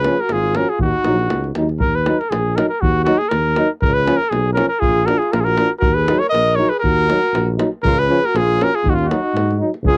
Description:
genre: balkan folk, Balkan brass band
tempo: 119 BPM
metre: 2/4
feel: swing 54% on 16ths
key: Eb minor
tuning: A4 = 440 Hz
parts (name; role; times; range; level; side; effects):
- clear trumpet; melody; 0.0-10.0 s; F4 to Eb5; -20 LUFS; equal; cassette tape
- clear alto saxophone; second line; 0.0-1.5, 4.8-10.0 s; Db4 to Bb4; -26 LUFS; equal; cassette tape
- clear trombone; accompaniment; 0.0-9.7 s; Db4 to Eb4; -24 LUFS; equal; cassette tape
- mellow tuba; bass; 0.0-10.0 s; Ab1 to Ab2; -23 LUFS; equal; none
- davul; percussion; 0.0-10.0 s; none; -25 LUFS; equal; none
- warm euphonium; accompaniment; 0.1-9.7 s; F3 to Gb3; -25 LUFS; equal; cassette tape
room: light reverb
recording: home recording on cassette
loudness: -17 LUFS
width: mono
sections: 0.0-1.8 A section; 1.8-9.8 A section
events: none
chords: 0.0 Db; 0.8 Ebm; 3.8 Db; 4.8 Bb; 5.8 Ebm; 7.8 Db; 8.8 Ebm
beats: 0.30 | 0.81 1.31 | 1.81 2.31 | 2.82 3.32 | 3.82 4.32 | 4.83 5.33 | 5.83 6.33 | 6.84 7.34 | 7.84 8.34 | 8.84 9.35 | 9.85

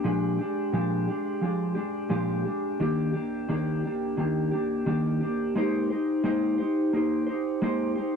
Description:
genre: indie pop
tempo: 87 BPM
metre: 4/4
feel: swing 60% on 16ths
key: Eb major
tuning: A4 = 441 Hz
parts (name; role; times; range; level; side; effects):
- mellow electric guitar; solo; 0.0-8.2 s; Bb2 to C5; -25 LUFS; equal; lush chorus, warbly pitch drift
room: light reverb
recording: dry, close 1970s-style studio recording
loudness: -25 LUFS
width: side -6 dB against mid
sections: 0.0-8.2 A section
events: none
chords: 0.0 Bb6; 2.8 Ebmaj7; 5.6 Abmaj9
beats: | 0.04 0.72 1.41 2.10 | 2.79 3.48 4.17 4.86 | 5.55 6.24 6.93 7.62

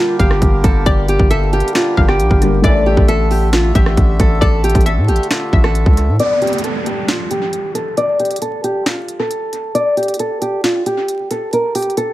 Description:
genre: hip hop, trap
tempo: 135 BPM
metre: 4/4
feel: half-time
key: unclear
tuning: A4 = 440 Hz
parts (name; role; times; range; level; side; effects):
- nylon-string guitar; melody; 0.0-12.1 s; F4 to D5; -17 LUFS; equal; low-pass filter, analog delay
- hollow square pluck; second line; 0.0-5.7 s; D5 to F5; -25 LUFS; left 5 dB; chorus, analog delay
- dark concert grand piano; accompaniment; 0.0-6.2 s; D3 to E5; -24 LUFS; left 3 dB; none
- hand-pumped harmonium; sustained chords; 0.0-6.2 s; D3 to E5; -25 LUFS; equal; none
- long sustained 808-style bass; bass; 0.2-6.2 s; G1 to A2; -15 LUFS; equal; none
- trap drum kit; drums; 0.2-12.1 s; hi-hat, kick drum, rim click, snare drum; -16 LUFS; equal; none
- mellow brass ensemble; stabs; 2.6-3.0 s; A2 to E3; -27 LUFS; right 6 dB; none
- downlifter; sound effects; 6.2-9.8 s; none; -25 LUFS; right 2 dB; none
room: small room ambience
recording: echo-heavy mix, vinyl crackle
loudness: -12 LUFS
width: side -16 dB against mid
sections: 0.0-6.2 A section; 6.2-12.1 B section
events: break 6.2-12.1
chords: 0.0 Gm; 2.6 Asus4; 6.2 N.C.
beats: 0.42 | 0.86 1.31 1.75 2.19 | 2.64 3.08 3.53 3.97 | 4.42 4.86 5.31 5.75 | 6.20 6.64 7.08 7.53 | 7.97 8.42 8.86 9.31 | 9.75 10.20 10.64 11.08 | 11.53 11.97

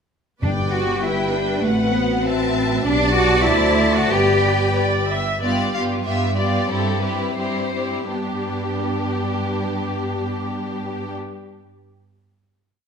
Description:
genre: quick classical-period movement for symphony orchestra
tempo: 80-100 BPM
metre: 2/4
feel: rubato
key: G major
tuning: A4 = 440 Hz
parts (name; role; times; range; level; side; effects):
- warm studio violin section; melody; 0.4-11.1 s; G4 to A5; -28 LUFS; left 4 dB; none
- rich studio violin section; second line; 0.4-11.1 s; D4 to G5; -27 LUFS; left 1 dB; none
- rich studio viola section; accompaniment; 0.4-11.2 s; G3 to E5; -26 LUFS; right 1 dB; none
- mellow French horn section; sustained chords; 0.4-5.1 s; A3 to G4; -24 LUFS; left 4 dB; none
- clear studio double bass section; bass; 0.4-5.2 s; G1 to D2; -24 LUFS; right 2 dB; none
- rich studio cello section; bass; 0.4-11.1 s; G2 to G4; -23 LUFS; right 1 dB; none
- timpani; percussion; 0.4-1.3 s; G2; -27 LUFS; left 2 dB; none
room: wet recital hall reverb, RT60 1.4 s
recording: minimal, uncompressed stereo recording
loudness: -18 LUFS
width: side -6 dB against mid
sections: 0.4-5.4 A section; 5.4-8.1 coda; 8.1-11.1 final chord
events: slowing down 4.8-8.1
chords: 0.4 G; 1.7 F#dim/A; 2.9 G/B; 3.5 D; 4.1 G; 5.4 G7; 6.7 C/G; 8.1 G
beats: | 0.42 1.04 | 1.66 2.27 | 2.87 3.49 | 4.13 4.78 | 5.42 6.05 | 6.69 7.37 | 8.11 8.84 | 9.59 10.32

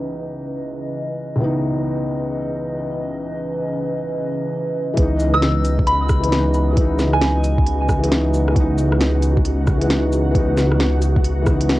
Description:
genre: future garage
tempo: 134 BPM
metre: 4/4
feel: swing 63% on 16ths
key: C# minor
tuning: A4 = 441 Hz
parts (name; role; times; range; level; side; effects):
- felt-muted upright piano; accompaniment; 0.0-11.8 s; C#2 to D#4; -23 LUFS; left 1 dB; vintage 12-bit sampler grit, sidechain pumping, cassette tape, analog delay
- warbly tape-like pad; sustained chords; 0.0-11.8 s; C#3 to D#5; -26 LUFS; equal; chorus, built-in reverb, vintage 12-bit sampler grit, sidechain pumping, cassette tape
- dark detuned saw bass; bass; 5.0-11.8 s; C#2; -19 LUFS; equal; sidechain pumping
- electronic kick drum; drums; 5.0-11.6 s; none; -18 LUFS; equal; overdrive, vintage 12-bit sampler grit, small room ambience, cassette tape
- organic electronic drum kit; drums; 5.0-11.8 s; cabasa, hi-hat, rim click, snare drum; -23 LUFS; equal; overdrive, vintage 12-bit sampler grit, small room ambience, cassette tape
- flickering grainy texture; texture; 5.7-11.8 s; F#4; -30 LUFS; right 3 dB; built-in reverb, cassette tape
- soft synth bell; melody; 5.3-7.6 s; G#5 to E6; -23 LUFS; right 1 dB; chorus, phaser, cassette tape, analog delay
room: light reverb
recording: home recording on cassette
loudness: -16 LUFS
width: side -17 dB against mid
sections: 0.0-5.0 A section; 5.0-11.8 B section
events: none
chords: 0.0 C#m7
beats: 0.05 0.50 0.95 | 1.40 1.84 2.29 2.74 | 3.19 3.63 4.08 4.53 | 4.98 5.42 5.87 6.32 | 6.77 7.22 7.66 8.11 | 8.56 9.01 9.46 9.90 | 10.35 10.80 11.25 11.69

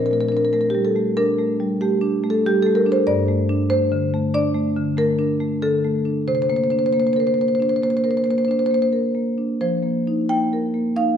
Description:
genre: classical, contemporary piece for solo marimba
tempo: 93 BPM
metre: 5/4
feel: rubato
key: Bb major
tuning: A4 = 440 Hz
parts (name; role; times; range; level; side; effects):
- marimba with medium mallets; solo; 0.0-11.2 s; G2 to G5; -18 LUFS; equal; none
room: wet recital hall reverb, RT60 1.4 s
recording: dark, warm production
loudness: -18 LUFS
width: side -8 dB against mid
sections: 0.0-11.2 A section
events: none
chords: 0.0 Bbmaj13; 3.1 Gmadd9; 6.3 Csus2; 9.6 F9sus4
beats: 0.53 1.17 1.80 2.45 | 3.08 3.72 4.35 4.97 5.61 | 6.26 6.92 7.58 8.24 8.91 | 9.59 10.29 10.96

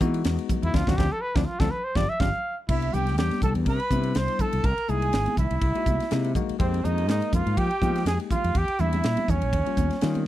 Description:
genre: electric jazz fusion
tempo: 123 BPM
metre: 4/4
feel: swing 54% on 16ths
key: unclear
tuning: A4 = 440 Hz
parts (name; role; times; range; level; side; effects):
- bell-like tine electric piano; accompaniment; 0.0-10.2 s; G3 to Bb4; -31 LUFS; left 11 dB; medium stereo tremolo
- fretless electric bass; bass; 0.0-10.2 s; G1 to F3; -26 LUFS; equal; none
- crisp fusion drum kit; drums; 0.0-10.3 s; crash cymbal, hi-hat, kick drum, ride cymbal, snare drum; -28 LUFS; equal; none
- congas; percussion; 0.0-10.3 s; none; -32 LUFS; right 4 dB; none
- mellow trumpet; melody; 0.6-10.3 s; C4 to F5; -29 LUFS; equal; none
- breathy bright jazz flute; second line; 2.7-10.3 s; C5 to C6; -34 LUFS; right 11 dB; none
room: small room reverb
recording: dry, close 1970s-style studio recording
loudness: -22 LUFS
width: side -14 dB against mid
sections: 0.0-2.7 A section; 2.7-10.3 B section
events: trumpet solo 0.0-2.7; band accent 0.7-2.7; drum fill 1.7-2.7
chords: 0.0 Emaj9; 0.7 Dm7; 1.7 G5; 2.7 Cmaj9; 4.6 C7alt; 6.6 Fm11; 8.6 Em7b5; 9.5 Eb9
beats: 0.25 | 0.74 1.23 1.72 2.20 | 2.69 3.18 3.67 4.15 | 4.64 5.13 5.62 6.11 | 6.59 7.08 7.57 8.06 | 8.55 9.04 9.53 10.02

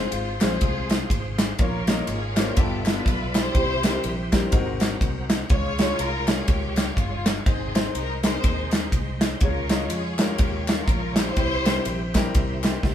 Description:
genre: uptempo gospel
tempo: 123 BPM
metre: 4/4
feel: swing 60% on 8ths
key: unclear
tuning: A4 = 440 Hz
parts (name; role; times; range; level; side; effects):
- warm studio string section; melody; 0.0-12.2 s; Ab3 to Db5; -30 LUFS; left 1 dB; none
- clear baby grand piano; accompaniment; 0.0-12.9 s; G2 to G5; -30 LUFS; left 3 dB; none
- bright tonewheel organ; sustained chords; 0.0-12.9 s; Ab3 to Db6; -36 LUFS; right 3 dB; fast rotary speaker, chorus vibrato
- vintage muted fingered electric bass; bass; 0.0-12.9 s; G1 to F2; -30 LUFS; equal; none
- modern studio drum kit; drums; 0.1-12.9 s; kick drum, ride cymbal, snare drum; -23 LUFS; equal; none
- group handclap; percussion; 0.4-12.7 s; none; -35 LUFS; left 3 dB; none
room: moderate small room reverb, RT60 0.5 s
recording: band playing live in one room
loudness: -21 LUFS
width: side -10 dB against mid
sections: 0.0-12.9 A section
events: none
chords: 0.0 Fm; 1.6 Bbm; 2.6 G13; 3.5 C; 4.5 Ab9; 5.5 Db; 7.5 Ab; 9.4 Db; 11.4 C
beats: 0.12 0.61 1.10 | 1.59 2.08 2.57 3.06 | 3.55 4.04 4.53 5.01 | 5.50 5.99 6.48 6.97 | 7.46 7.95 8.44 8.93 | 9.42 9.90 10.39 10.88 | 11.37 11.86 12.35 12.84

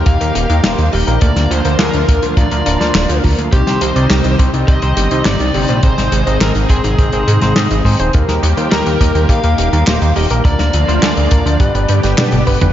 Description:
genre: synthwave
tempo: 104 BPM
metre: 4/4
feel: straight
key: C minor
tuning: A4 = 440 Hz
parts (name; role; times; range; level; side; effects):
- lead guitar through a small cranked amp; melody; 0.0-12.4 s; G4 to F5; -21 LUFS; left 2 dB; overdrive, digital delay, slapback echo
- analog string pad; sustained chords; 0.0-12.7 s; C3 to G4; -20 LUFS; equal; ensemble chorus, sidechain pumping
- soft round pluck; arpeggios; 0.0-12.7 s; Bb3 to D5; -24 LUFS; right 2 dB; chorus, digital delay, slapback echo
- bell-like tine electric piano; stabs; 0.0-12.7 s; Bb3 to Eb5; -20 LUFS; left 1 dB; phaser, slapback echo
- chorused synth bass; bass; 0.0-12.7 s; D1 to Ab2; -15 LUFS; equal; tube saturation
- kick drum; drums; 0.1-12.6 s; none; -14 LUFS; equal; none
- natural country drum kit; drums; 0.1-12.7 s; handclaps, hi-hat, snare drum, toms; -19 LUFS; equal; none
room: moderate lush hall reverb, RT60 1.9 s, small room ambience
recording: big arena sound, nothing above 7.5 kHz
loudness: -11 LUFS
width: side -11 dB against mid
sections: 0.0-12.7 A section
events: drum fill 12.2-12.7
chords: 0.0 Eb; 1.2 Bb/D; 3.5 Cm; 5.8 Ab; 8.1 Eb; 10.4 Bb/D; 11.6 G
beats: 0.07 0.64 | 1.22 1.79 2.37 2.95 | 3.53 4.10 4.68 5.26 | 5.83 6.41 6.99 7.57 | 8.14 8.72 9.29 9.87 | 10.45 11.03 11.60 12.18

